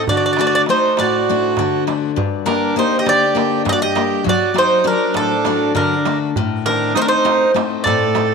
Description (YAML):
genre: greek folk, Greek bouzouki band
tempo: 201 BPM (eighths)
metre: 7/8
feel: straight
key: unclear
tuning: A4 = 440 Hz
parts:
  - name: accordion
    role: second line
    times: 0.0-8.3 s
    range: D4 to A4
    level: -20 LUFS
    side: right 9 dB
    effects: none
  - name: picked steel-string acoustic guitar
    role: accompaniment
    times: 0.0-8.3 s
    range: G2 to D5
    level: -20 LUFS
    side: left 12 dB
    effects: none
  - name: Greek bouzouki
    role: melody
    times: 0.1-8.3 s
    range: A4 to Eb5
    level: -18 LUFS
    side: right 1 dB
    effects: tape echo
  - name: darbuka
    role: percussion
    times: 0.1-8.3 s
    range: none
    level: -25 LUFS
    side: right 6 dB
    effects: none
room: moderate plate reverb, RT60 3.5 s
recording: 1960s-style stereo with parts hard left and right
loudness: -14 LUFS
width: side -5 dB against mid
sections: 0.0-8.3 A section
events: none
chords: 0.1 D; 2.2 Gm; 4.3 D; 6.4 Adim